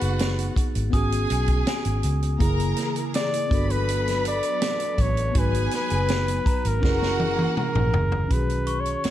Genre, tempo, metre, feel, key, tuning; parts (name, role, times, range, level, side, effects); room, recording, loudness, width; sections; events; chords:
lush 1970s-style soul; 81 BPM; 4/4; straight; B major; A4 = 440 Hz
warm flugelhorn; melody; 0.0-9.1 s; A#4 to D5; -27 LUFS; left 1 dB
warm studio violin section; second line; 0.0-7.9 s; F#4 to B5; -32 LUFS; equal
mellow tine electric piano; accompaniment; 0.0-9.1 s; C#3 to B4; -29 LUFS; left 1 dB; medium stereo tremolo
vintage muted fingered electric bass; bass; 0.0-9.1 s; F#1 to C#2; -25 LUFS; equal
vintage drum kit; drums; 0.0-9.1 s; hi-hat, kick drum, snare drum, toms; -26 LUFS; equal
glockenspiel with soft plastic mallets; texture; 0.9-9.1 s; G#5 to B6; -38 LUFS; left 1 dB
soft string machine; sustained chords; 2.4-8.3 s; E3 to B4; -34 LUFS; equal; ensemble chorus
studio ambience; -21 LUFS; side -12 dB against mid
0.0-8.3 A section
drum fill 6.8-8.3
0.0 G#m7; 0.9 B69/G#; 2.4 F#9; 3.5 Gmaj9; 5.4 G#m9; 6.8 F#9; 8.3 B69